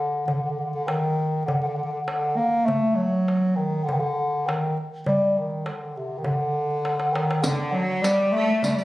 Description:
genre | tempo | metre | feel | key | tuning
Arabic maqam ensemble | 101 BPM | 4/4 | straight | unclear | A4 = 441 Hz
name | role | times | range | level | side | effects
warm bass clarinet | melody | 0.0-8.8 s | C3 to Bb3 | -22 LUFS | equal | plate reverb
darbuka | percussion | 0.3-8.8 s | none | -31 LUFS | equal | none
riq | percussion | 7.4-8.8 s | none | -28 LUFS | equal | none
rich chamber cello section | second line | 7.5-8.8 s | D3 to A3 | -26 LUFS | right 2 dB | none
room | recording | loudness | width
wet studio reverb, RT60 0.6 s | recorded on a phone in the room, club reverb | -22 LUFS | side -17 dB against mid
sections
0.0-8.8 A section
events
drum fill 6.9-7.4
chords
none

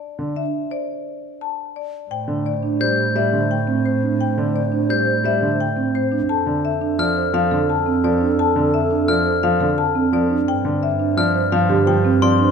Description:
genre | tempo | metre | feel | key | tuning
classical, minimalist pattern music | 172 BPM | 6/4 | straight | unclear | A4 = 440 Hz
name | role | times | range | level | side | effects
warm concert grand piano | accompaniment | 0.2-12.4 s | D3 to G3 | -24 LUFS | equal | none
marimba with hard mallets | melody | 0.4-12.4 s | C5 to A5 | -24 LUFS | left 13 dB | none
marimba with soft mallets | arpeggios | 0.4-12.5 s | C4 to C5 | -22 LUFS | right 6 dB | none
wooden-headed alto flute | second line | 2.1-12.5 s | A4 to C5 | -27 LUFS | right 3 dB | none
clear double bass | bass | 2.1-12.5 s | F2 to A2 | -24 LUFS | right 3 dB | none
glockenspiel with hard plastic mallets | arpeggios | 2.8-12.4 s | C6 to G6 | -25 LUFS | left 6 dB | none
room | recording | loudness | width
wet recital hall reverb, RT60 1.3 s | none | -17 LUFS | side -6 dB against mid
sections
0.0-2.1 A section; 2.1-12.5 B section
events
none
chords
0.0 N.C.; 2.1 Am7; 6.3 F; 10.5 G7sus4

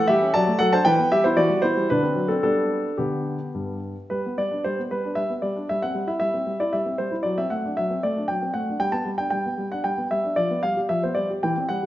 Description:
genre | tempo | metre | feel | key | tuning
classical-period piano sonatina | 115 BPM | 3/4 | rubato | G major | A4 = 441 Hz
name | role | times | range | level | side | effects
warm baby grand piano | solo | 0.0-11.9 s | G2 to A5 | -21 LUFS | equal | none
room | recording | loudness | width
wet recital hall reverb, RT60 1.6 s | nothing above 7.6 kHz | -21 LUFS | side -14 dB against mid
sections
0.0-4.1 A section; 4.1-11.9 B section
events
none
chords
0.3 D/F#; 0.9 Em; 1.9 D7; 2.5 G; 5.7 C/G; 7.3 D7/F#; 8.8 G; 10.4 G7/F

